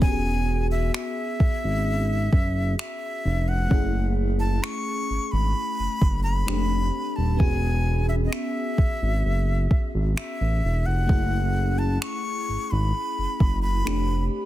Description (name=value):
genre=contemporary R&B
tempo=65 BPM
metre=4/4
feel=straight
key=unclear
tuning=A4 = 441 Hz
part: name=breathy bright jazz flute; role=melody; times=0.0-14.2 s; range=D#5 to C#6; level=-30 LUFS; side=left 2 dB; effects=tape echo
part: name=FM electric piano with soft pad layer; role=accompaniment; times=0.0-14.5 s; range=G#3 to G#4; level=-30 LUFS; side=left 1 dB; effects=chorus
part: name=smooth synth bass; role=bass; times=0.0-14.3 s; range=D#1 to A1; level=-24 LUFS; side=equal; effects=none
part: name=smooth R&B drum kit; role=drums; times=0.0-14.1 s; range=finger snaps, kick drum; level=-22 LUFS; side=equal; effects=overdrive, soft clipping on snare
room=little or no reverb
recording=dense, heavily limited modern master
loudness=-22 LUFS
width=side -14 dB against mid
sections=0.0-14.5 A section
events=none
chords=0.0 E6; 3.7 F#m7; 6.5 F6; 7.4 E6; 11.1 F#m7; 13.9 F6